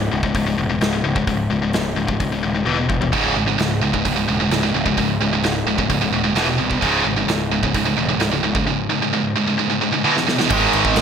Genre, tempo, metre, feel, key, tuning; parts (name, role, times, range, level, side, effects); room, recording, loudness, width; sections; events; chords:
heavy metal; 130 BPM; 4/4; straight; C# minor; A4 = 441 Hz
heavy high-gain guitar; riff; 0.0-11.0 s; C#2 to G#3; -21 LUFS; left 6 dB; distortion
fuzz picked electric bass; bass; 0.0-11.0 s; C#1 to B#1; -24 LUFS; right 1 dB; overdrive
big rock drum kit; drums; 0.2-11.0 s; crash cymbal, hi-hat, kick drum, ride cymbal, snare drum, toms; -24 LUFS; right 1 dB; gated reverb
heavy high-gain guitar; riff; 3.1-11.0 s; C#2 to G#3; -20 LUFS; right 12 dB; distortion
phased analog pad; sustained chords; 10.8-11.0 s; D#3 to D#5; -27 LUFS; right 6 dB
overdriven semi-hollow guitar; riff; 10.5-11.0 s; G#2 to G#3; -25 LUFS; right 3 dB
moderate plate reverb, RT60 1.4 s, small room ambience; bright 1980s-style digital production; -16 LUFS; side -7 dB against mid
0.0-10.5 A section
drum fill 2.7-3.1, 10.0-10.5
0.0 C#5; 2.7 E5; 3.1 C#5; 6.4 E5; 6.8 C#5; 10.0 E5; 10.5 G#m